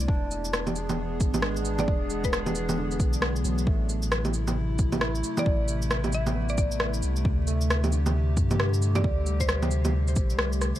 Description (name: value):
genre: future garage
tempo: 134 BPM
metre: 4/4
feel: swing 61% on 16ths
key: unclear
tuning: A4 = 439 Hz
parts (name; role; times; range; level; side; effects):
- barky tine electric piano; accompaniment; 0.0-10.8 s; D3 to E4; -35 LUFS; right 1 dB; medium stereo tremolo, vintage 12-bit sampler grit, sidechain pumping, dub echo
- warbly tape-like pad; sustained chords; 0.0-10.8 s; C3 to G#4; -33 LUFS; left 1 dB; chorus, built-in reverb, phaser, sidechain pumping
- warm sub bass; bass; 0.0-10.7 s; E1 to G2; -28 LUFS; equal; tube saturation, sidechain pumping
- electronic shaker, cabasa, rim click and bongos; drums; 0.0-10.8 s; none; -29 LUFS; right 1 dB; none
- electronic kick drum; drums; 0.1-10.3 s; none; -26 LUFS; equal; overdrive
- mallet-like synth pluck; melody; 1.8-10.0 s; B4 to E5; -36 LUFS; equal; chorus, dub echo
room: little or no reverb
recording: vinyl crackle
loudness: -23 LUFS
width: side -13 dB against mid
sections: 0.0-10.8 A section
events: none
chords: 0.1 E7; 3.7 Am; 7.3 D7sus4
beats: | 0.09 0.54 0.99 1.44 | 1.88 2.33 2.78 3.23 | 3.67 4.12 4.57 5.02 | 5.47 5.91 6.36 6.81 | 7.26 7.70 8.15 8.60 | 9.05 9.49 9.94 10.39